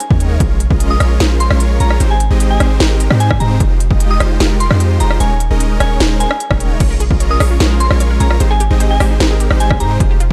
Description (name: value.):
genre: future bass.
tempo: 150 BPM.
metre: 4/4.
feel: half-time.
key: unclear.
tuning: A4 = 441 Hz.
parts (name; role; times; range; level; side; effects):
soft synth bell; melody; 0.0-10.0 s; Ab5 to Eb6; -24 LUFS; equal; chorus, sidechain pumping, delay.
trap drum kit; drums; 0.0-10.3 s; crash cymbal, hi-hat, rim click, snare drum; -21 LUFS; equal; none.
supersaw chords; riff; 0.1-10.3 s; Ab3 to Eb5; -22 LUFS; equal; sidechain pumping.
warm 808-style bass; bass; 0.1-10.3 s; Eb1 to Ab2; -15 LUFS; equal; sidechain pumping.
electronic kick drum; drums; 0.1-0.8, 3.3-4.0, 6.5-7.2, 9.7-10.3 s; none; -17 LUFS; equal; overdrive.
unison pluck; arpeggios; 6.8-10.3 s; Eb4 to Db5; -28 LUFS; equal; sidechain pumping, tape echo.
room: digital ambience.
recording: dark, warm production.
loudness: -13 LUFS.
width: mono.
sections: 0.0-10.3 A section.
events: none.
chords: 0.4 Bbm7; 2.0 Abmaj7; 3.6 Fm9; 5.2 Eb7sus4; 6.8 Bbm7; 8.4 Abmaj7.